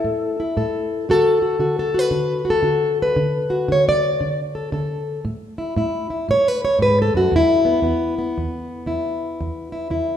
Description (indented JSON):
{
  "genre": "acoustic country blues, solo or duo",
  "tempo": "116 BPM",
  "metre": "4/4",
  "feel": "swing 64% on 8ths",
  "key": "unclear",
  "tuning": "A4 = 440 Hz",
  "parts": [
    { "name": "fingerpicked plugged-in acoustic archtop guitar", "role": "solo", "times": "0.0-10.2 s", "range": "E2 to D5", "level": "-18 LUFS", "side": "left 1 dB", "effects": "none" }
  ],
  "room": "wet recital hall reverb, RT60 1.4 s",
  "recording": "recorded in a church or concert hall",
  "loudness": "-18 LUFS",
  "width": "side -9 dB against mid",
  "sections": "0.0-10.2 A section",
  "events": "steel-string acoustic guitar solo 0.0-10.2",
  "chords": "0.0 A5; 1.1 D; 5.3 A5; 7.3 E5"
}